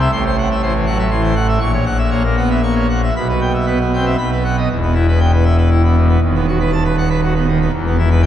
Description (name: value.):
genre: classical, organ toccata.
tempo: 119 BPM.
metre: 3/4.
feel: straight.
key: unclear.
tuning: A4 = 440 Hz.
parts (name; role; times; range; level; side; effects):
pipe organ, full organ; solo; 0.0-8.3 s; D#1 to C#6; -13 LUFS; equal; none.
room: wet church reverb, RT60 3.6 s.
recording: dark, warm production.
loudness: -13 LUFS.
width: side -11 dB against mid.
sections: 0.0-4.7 A section; 4.7-8.3 B section.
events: none.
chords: 0.1 F#m7b5/A; 1.6 F#7/A#; 3.1 Em/B; 4.2 B; 4.7 Em; 6.2 B7/D#; 7.7 E5.